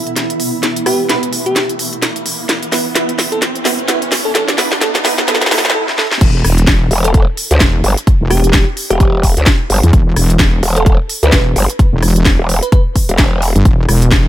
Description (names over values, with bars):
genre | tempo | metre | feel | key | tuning
bass house | 129 BPM | 4/4 | swing 58% on 16ths | E minor | A4 = 440 Hz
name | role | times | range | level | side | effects
riser | sound effects | 0.9-5.7 s | none | -24 LUFS | right 2 dB | none
granular cloud pad | texture | 0.0-5.7 s | B3 to B5 | -24 LUFS | right 1 dB | built-in reverb, sidechain pumping
house drum kit | drums | 0.1-14.2 s | crash cymbal, hi-hat, rim click, snare drum | -16 LUFS | equal | none
bell-like FM electric piano | melody | 0.9-12.8 s | G4 to B4 | -21 LUFS | equal | chorus, tape echo
orchestra-hit-like synth stab | stabs | 0.9-5.7 s | B3 to B4 | -21 LUFS | right 4 dB | built-in reverb, sidechain pumping, tape echo
wobble bass | bass | 6.2-14.3 s | E1 to E2 | -12 LUFS | equal | chorus, tube saturation, sidechain pumping
electronic kick drum | drums | 6.2-14.2 s | none | -11 LUFS | equal | none
growl bass | bass | 6.9-13.5 s | E1 to D2 | -12 LUFS | equal | chorus, sidechain pumping
room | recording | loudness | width
digital ambience | high-pass filter | -10 LUFS | side -13 dB against mid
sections
0.0-6.2 A section; 6.2-14.3 B section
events
build-up 0.0-6.2; drum fill 0.0-5.7, 5.9-6.2; filter sweep on synth stab 0.0-6.2; riser 0.9-5.7; break 5.7-6.2; drop 6.2-14.3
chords
0.0 E5